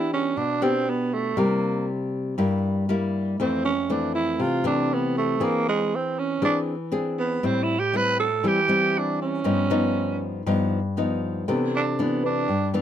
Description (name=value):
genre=bossa nova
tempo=119 BPM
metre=4/4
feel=straight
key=unclear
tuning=A4 = 440 Hz
part: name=growling tenor saxophone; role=melody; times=0.0-12.7 s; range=G#3 to B4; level=-24 LUFS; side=right 4 dB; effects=none
part: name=nylon-string guitar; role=accompaniment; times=0.0-12.8 s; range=F2 to G#4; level=-24 LUFS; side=left 2 dB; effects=none
part: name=warm baby grand piano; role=accompaniment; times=11.5-12.8 s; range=A4 to B4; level=-31 LUFS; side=right 1 dB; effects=none
room=little or no reverb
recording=close, detailed microphones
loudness=-21 LUFS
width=side -10 dB against mid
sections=0.0-12.8 A section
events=tenor saxophone solo 0.0-12.8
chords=0.0 Em7; 1.4 C7; 3.4 Fmaj7; 5.4 Eaug7; 7.4 Am7; 9.4 Gaug7; 11.5 Cmaj9